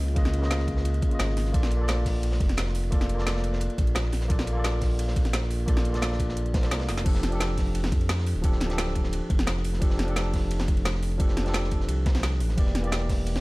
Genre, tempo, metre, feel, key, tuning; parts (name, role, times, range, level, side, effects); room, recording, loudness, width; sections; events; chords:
liquid drum and bass; 174 BPM; 4/4; straight; F major; A4 = 440 Hz
tine electric piano; accompaniment; 0.0-13.4 s; Db3 to Eb5; -32 LUFS; equal; overdrive, tape echo
smooth synth bass; bass; 0.0-13.4 s; D1 to F2; -27 LUFS; equal
crunchy breakbeat drum kit; drums; 0.1-13.4 s; hi-hat, ride cymbal, snare drum; -37 LUFS; equal; high-pass filter on cymbals, studio ambience, high-pass filter on hats, high-pass filter on snare, high-pass filter on room
electronic kick drum; drums; 0.2-13.2 s; -25 LUFS; equal; overdrive, studio ambience
garage drum kit; drums; 0.2-13.4 s; crash cymbal, hi-hat, ride cymbal, snare drum; -33 LUFS; equal; overdrive, studio ambience
studio reverb; dark, warm production; -23 LUFS; side -22 dB against mid
0.0-7.1 A section; 7.1-13.4 A section
drop 0.0-7.1, 7.1-13.4; kick drops out 6.7-7.1; drum fill 6.9
0.0 Db69; 1.5 Bbmaj7; 7.1 F69; 12.6 Gm6